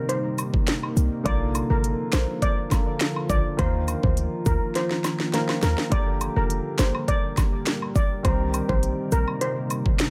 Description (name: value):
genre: dancehall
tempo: 103 BPM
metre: 4/4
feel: straight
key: G minor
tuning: A4 = 438 Hz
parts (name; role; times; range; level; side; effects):
- warm concert grand piano; accompaniment; 0.0-10.1 s; D3 to C5; -34 LUFS; equal; none
- deep dark ambient pad; sustained chords; 0.0-10.1 s; C3 to Bb4; -33 LUFS; equal; chorus, built-in reverb, sidechain pumping
- steel pan; melody; 0.1-9.8 s; Bb4 to D5; -32 LUFS; equal; tape echo
- island pop drum kit; drums; 0.1-10.1 s; finger snaps, hi-hat, kick drum, snare drum; -27 LUFS; equal; overdrive
- cabasa and woodblock; percussion; 0.4-9.8 s; none; -36 LUFS; equal; none
- short 808-style bass; bass; 1.0-9.2 s; F1 to Eb2; -26 LUFS; equal; none
room: light reverb, studio ambience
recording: none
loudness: -24 LUFS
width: mono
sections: 0.0-5.9 A section; 5.9-10.1 B section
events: drum fill 4.8-5.9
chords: 0.0 Cm7; 1.3 Bb; 3.6 Ebsus2; 5.9 Gm; 8.2 Cm7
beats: 0.09 0.68 | 1.26 1.84 2.42 3.01 | 3.59 4.17 4.75 5.34 | 5.92 6.50 7.08 7.67 | 8.25 8.83 9.41 10.00